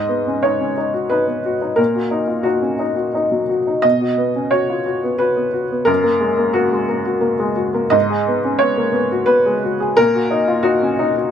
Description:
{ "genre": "neoclassical minimalist piano", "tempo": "88 BPM", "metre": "3/4", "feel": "rubato", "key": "Eb minor", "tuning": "A4 = 440 Hz", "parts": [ { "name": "clear upright piano", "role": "solo", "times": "0.0-11.3 s", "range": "Gb2 to Eb5", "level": "-15 LUFS", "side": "left 1 dB", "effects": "none" } ], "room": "light reverb", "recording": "none", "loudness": "-15 LUFS", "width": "side -8 dB against mid", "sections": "0.0-11.3 A section", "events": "none", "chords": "0.0 Abm7; 1.8 Ebm/Bb; 3.8 Bsus2; 5.9 Gbadd9; 7.9 Abm7; 10.0 Ebm/Bb" }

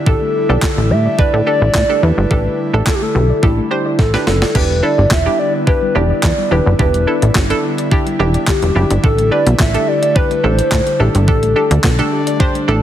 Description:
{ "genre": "dance-pop", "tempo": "107 BPM", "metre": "4/4", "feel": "straight", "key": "E minor", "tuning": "A4 = 440 Hz", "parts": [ { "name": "airy breathy pad", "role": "sustained chords", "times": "0.0-12.8 s", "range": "D3 to E4", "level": "-22 LUFS", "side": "equal", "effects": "chorus, sidechain pumping" }, { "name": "hollow clarinet-like synth lead", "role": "melody", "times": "0.1-11.8 s", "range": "E4 to E5", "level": "-18 LUFS", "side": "equal", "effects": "chorus, ping-pong delay" }, { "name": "hollow square pluck", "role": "accompaniment", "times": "0.1-12.8 s", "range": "D4 to C5", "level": "-21 LUFS", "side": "right 2 dB", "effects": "chorus, sidechain pumping" }, { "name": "soft round pluck", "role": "arpeggios", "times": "0.1-12.8 s", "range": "D3 to D5", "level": "-26 LUFS", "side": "left 6 dB", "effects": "chorus, sidechain pumping, ping-pong delay" }, { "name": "plucky analog bass", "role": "bass", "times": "0.1-12.8 s", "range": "E1 to A2", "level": "-14 LUFS", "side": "equal", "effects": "sidechain pumping" }, { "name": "crisp 8-bit digital drum machine", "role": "drums", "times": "0.1-12.7 s", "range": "crash cymbal, handclaps, hi-hat, kick drum, snare drum", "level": "-16 LUFS", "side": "equal", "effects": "none" } ], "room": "light reverb, digital ambience", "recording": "heavily compressed radio sound", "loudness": "-12 LUFS", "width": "side -11 dB against mid", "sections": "0.0-4.6 A section; 4.6-12.8 B section", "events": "drum fill 4.0-4.6", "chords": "0.1 A7sus4; 4.6 Em7; 9.0 A7sus4" }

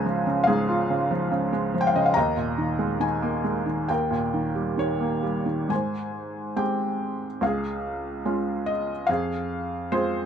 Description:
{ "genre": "classical, lyrical solo piano", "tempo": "65-74 BPM", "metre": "4/4", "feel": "rubato", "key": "Ab major", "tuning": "A4 = 440 Hz", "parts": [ { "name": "felt-muted upright piano", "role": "solo", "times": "0.0-10.3 s", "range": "Db2 to Bb5", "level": "-23 LUFS", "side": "equal", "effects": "none" } ], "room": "light reverb", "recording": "none", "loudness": "-23 LUFS", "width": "side -8 dB against mid", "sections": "0.0-5.7 A section; 5.7-10.3 B section", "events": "none", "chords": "0.0 Db; 2.2 Ebsus4; 3.9 Eb; 5.7 Abmaj7; 7.4 Db; 9.1 Fm" }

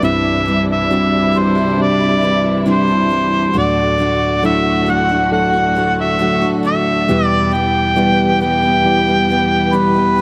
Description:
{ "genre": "pop ballad", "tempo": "68 BPM", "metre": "4/4", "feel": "straight", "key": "unclear", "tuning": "A4 = 440 Hz", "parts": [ { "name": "mellow harmonica", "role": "melody", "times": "0.0-10.2 s", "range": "B4 to G5", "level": "-18 LUFS", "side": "equal", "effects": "none" }, { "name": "tine electric piano", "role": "accompaniment", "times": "0.0-10.2 s", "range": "C2 to A4", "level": "-19 LUFS", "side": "equal", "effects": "none" }, { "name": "rich studio string section", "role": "sustained chords", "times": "0.0-10.2 s", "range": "D2 to G4", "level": "-25 LUFS", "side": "equal", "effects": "none" }, { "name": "picked steel-string acoustic guitar", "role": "arpeggios", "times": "0.0-10.2 s", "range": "E2 to F#4", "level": "-24 LUFS", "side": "equal", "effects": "digital delay" } ], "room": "light reverb, small room ambience", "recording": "none", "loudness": "-15 LUFS", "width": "mono", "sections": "0.0-10.2 A section", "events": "none", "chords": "0.0 Cadd9; 3.6 D; 7.1 Em" }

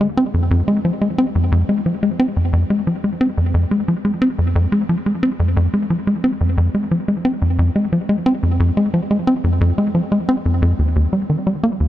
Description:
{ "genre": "ambient", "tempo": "89 BPM", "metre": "4/4", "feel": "straight", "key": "F minor", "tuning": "A4 = 440 Hz", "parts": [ { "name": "tight sequencer bass", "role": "solo", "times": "0.0-11.9 s", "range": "Eb2 to C4", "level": "-15 LUFS", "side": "equal", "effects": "analog delay" } ], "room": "moderate huge ambient reverb, RT60 7.5 s", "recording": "none", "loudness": "-15 LUFS", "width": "side -13 dB against mid", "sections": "0.0-10.8 A section; 10.8-11.9 B section", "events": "none", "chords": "none" }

